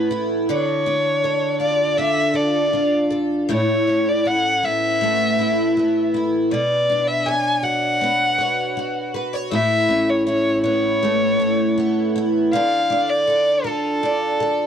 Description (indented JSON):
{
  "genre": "pop",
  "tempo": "80 BPM",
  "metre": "4/4",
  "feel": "straight",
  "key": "A major",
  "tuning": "A4 = 440 Hz",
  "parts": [
    { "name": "warm violin", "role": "melody", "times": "0.0-14.7 s", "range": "A4 to G#5", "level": "-20 LUFS", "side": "left 1 dB", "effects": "none" },
    { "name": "picked twelve-string acoustic guitar", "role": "accompaniment", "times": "0.0-14.7 s", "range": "A2 to C#5", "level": "-20 LUFS", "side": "right 1 dB", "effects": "double-tracked left and right" }
  ],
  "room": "light reverb, small room ambience",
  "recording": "dry, close 1970s-style studio recording",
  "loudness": "-17 LUFS",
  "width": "side -8 dB against mid",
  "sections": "0.0-14.7 A section",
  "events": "none",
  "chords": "0.5 Dm; 3.5 Aadd9; 6.5 Bmadd9; 9.5 Aadd9; 12.5 Dm"
}